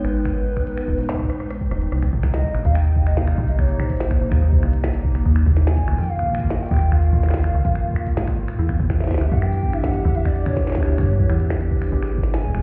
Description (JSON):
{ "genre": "IDM", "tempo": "144 BPM", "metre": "4/4", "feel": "straight", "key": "unclear", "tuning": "A4 = 439 Hz", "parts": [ { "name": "warbly nostalgic lead", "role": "melody", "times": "0.0-12.6 s", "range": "Cb5 to Ab5", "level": "-32 LUFS", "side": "equal", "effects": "lush chorus, digital delay" }, { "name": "warbly tape-like pad", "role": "sustained chords", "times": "0.0-12.6 s", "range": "C3 to Cb5", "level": "-31 LUFS", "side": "equal", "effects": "chorus, built-in reverb, phaser" }, { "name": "metallic FM bass", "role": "bass", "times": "0.0-12.6 s", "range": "Eb1 to Ab2", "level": "-23 LUFS", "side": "equal", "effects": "none" }, { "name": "glitchy drum kit", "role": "drums", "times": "0.0-12.6 s", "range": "finger snaps, hi-hat, rim click, shaker, snare drum, toms", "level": "-32 LUFS", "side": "equal", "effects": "studio ambience" }, { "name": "twinkling granular texture", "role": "texture", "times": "0.0-1.9 s", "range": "G5", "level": "-52 LUFS", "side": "equal", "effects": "none" }, { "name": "electronic kick drum", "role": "drums", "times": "0.3-12.6 s", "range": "none", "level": "-25 LUFS", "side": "equal", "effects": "studio ambience" }, { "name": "kalimba", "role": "arpeggios", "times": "8.6-12.6 s", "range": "B3 to B4", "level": "-32 LUFS", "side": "equal", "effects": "none" } ], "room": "little or no reverb", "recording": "heard muffled through a wall, stone room reverb, EQ", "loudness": "-20 LUFS", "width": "mono", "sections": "0.0-1.9 A section; 1.9-12.6 B section", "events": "drum fill 1.1-1.9", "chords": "0.0 Abm; 1.9 Cm7; 5.3 Ebsus2; 8.6 Em7; 11.9 Abm", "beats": "| 0.26 0.67 1.09 1.50 | 1.92 2.34 2.75 3.17 | 3.59 4.00 4.42 4.84 | 5.25 5.67 6.09 6.50 | 6.92 7.34 7.75 8.17 | 8.59 9.01 9.42 9.84 | 10.26 10.67 11.09 11.51 | 11.92 12.34" }